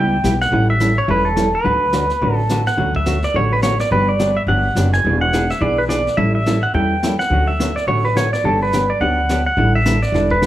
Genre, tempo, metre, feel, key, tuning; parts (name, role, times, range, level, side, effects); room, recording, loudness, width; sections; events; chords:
country, western swing; 212 BPM; 4/4; swing 60% on 8ths; D major; A4 = 440 Hz
pedal steel guitar; melody; 0.0-10.5 s; A4 to G#5; -18 LUFS; right 1 dB
vintage hollow-body jazz guitar; accompaniment; 0.0-10.5 s; D3 to B4; -20 LUFS; equal
upright bass; bass; 0.0-10.5 s; E1 to E2; -19 LUFS; equal
jazz brush drum kit; drums; 0.2-10.5 s; brushed snare drum, hi-hat, kick drum, snare drum; -28 LUFS; left 1 dB
light reverb; small room ambience; -14 LUFS; side -13 dB against mid
0.0-10.5 A section
0.0 G6; 0.5 A7; 1.7 D6; 2.8 Dmaj7; 3.9 Gmaj7; 5.0 E7; 6.2 A7; 7.3 Dmaj7; 8.4 Gmaj7; 9.6 A7sus4